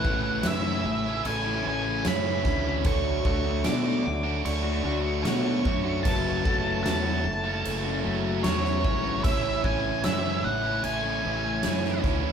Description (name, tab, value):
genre	post-rock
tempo	75 BPM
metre	4/4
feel	straight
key	A major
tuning	A4 = 439 Hz
part	octave-fuzz lead guitar	melody	0.0-12.0 s	C#5 to D6	-31 LUFS	left 1 dB	distortion
part	pedal harmonium	sustained chords	0.0-12.3 s	C#3 to F#4	-37 LUFS	right 2 dB	none
part	electric guitar through a small old amp	arpeggios	0.0-12.3 s	F#2 to G#4	-38 LUFS	left 1 dB	none
part	vibraphone with medium hard mallets	arpeggios	0.0-12.3 s	A4 to E5	-34 LUFS	right 10 dB	none
part	overdriven semi-hollow guitar	riff	0.0-12.3 s	A2 to F#4	-32 LUFS	left 6 dB	phaser
part	tight distorted guitar	riff	0.0-12.3 s	A2 to F#4	-33 LUFS	right 7 dB	distortion
part	fuzz fingered electric bass	bass	0.0-12.3 s	F#1 to B2	-30 LUFS	equal	overdrive
part	big rock drum kit	drums	0.0-12.2 s	crash cymbal, kick drum, snare drum	-30 LUFS	equal	none
room	wet studio reverb, RT60 0.6 s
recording	band playing live in one room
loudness	-24 LUFS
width	side -7 dB against mid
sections	0.0-12.3 A section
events	none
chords	0.0 Amaj7; 2.9 Dmaj7; 6.0 F#m7; 9.2 Amaj7